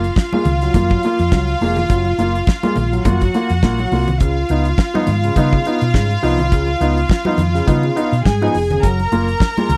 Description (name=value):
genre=disco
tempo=104 BPM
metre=4/4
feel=swing 56% on 16ths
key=F# major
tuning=A4 = 436 Hz
part: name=clear studio string section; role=second line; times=0.0-9.8 s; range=E#4 to A#5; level=-23 LUFS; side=equal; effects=none
part: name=warm grand piano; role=accompaniment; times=0.0-9.7 s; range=C#3 to E#4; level=-22 LUFS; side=equal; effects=none
part: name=hollow-body short-scale fingered electric bass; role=bass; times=0.0-9.8 s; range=E#1 to C#3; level=-20 LUFS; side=equal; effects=none
part: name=damped 70s drum kit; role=drums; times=0.0-9.8 s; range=hi-hat, kick drum, snare drum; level=-18 LUFS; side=equal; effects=none
part: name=congas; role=percussion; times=0.2-9.8 s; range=none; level=-27 LUFS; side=equal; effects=none
room=little or no reverb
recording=dry, close 1970s-style studio recording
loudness=-16 LUFS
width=mono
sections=0.0-9.8 A section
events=none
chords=0.0 F#maj7; 4.2 C#7; 8.8 F#maj9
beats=0.17 0.74 1.32 | 1.90 2.48 3.06 3.63 | 4.21 4.79 5.37 5.94 | 6.52 7.10 7.68 8.25 | 8.83 9.41